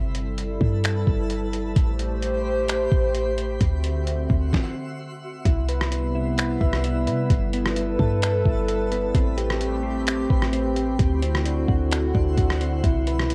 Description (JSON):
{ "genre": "hip hop, atmospheric cloud-rap", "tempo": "130 BPM", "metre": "4/4", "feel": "half-time", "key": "G major", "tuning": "A4 = 441 Hz", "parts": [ { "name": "warbly tape-like pad", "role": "sustained chords", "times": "0.0-13.3 s", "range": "B2 to E5", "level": "-29 LUFS", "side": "equal", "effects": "chorus, built-in reverb, sidechain pumping, cassette tape" }, { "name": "clean 808-style bass", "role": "bass", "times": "0.0-13.3 s", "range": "G1 to C3", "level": "-27 LUFS", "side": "equal", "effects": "none" }, { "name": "twinkling granular texture", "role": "texture", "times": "0.0-13.3 s", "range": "B3 to C7", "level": "-42 LUFS", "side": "equal", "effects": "built-in reverb, cassette tape" }, { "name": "trip hop sampler-style drum kit", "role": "drums", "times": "0.1-13.3 s", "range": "finger snaps, hi-hat, kick drum, rim click, snare drum", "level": "-26 LUFS", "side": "equal", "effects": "cassette tape" }, { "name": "soft electric-piano-like synth keys", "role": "arpeggios", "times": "5.5-13.3 s", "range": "B3 to E5", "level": "-32 LUFS", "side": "equal", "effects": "chorus, low-pass filter, cassette tape, analog delay" } ], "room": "light reverb", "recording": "home recording on cassette", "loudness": "-23 LUFS", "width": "mono", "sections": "0.0-5.5 A section; 5.5-13.3 B section", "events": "stop 4.5-5.5", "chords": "0.0 G69; 1.8 Am9; 3.6 D9; 5.5 Cmaj7; 7.3 G69; 9.1 Am9; 11.0 D9; 12.8 Cmaj7", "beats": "0.38 0.84 1.30 | 1.76 2.22 2.69 3.15 | 3.61 4.07 4.53 4.99 | 5.45 5.92 6.38 6.84 | 7.30 7.76 8.22 8.69 | 9.15 9.61 10.07 10.53 | 10.99 11.45 11.92 12.38 | 12.84 13.30" }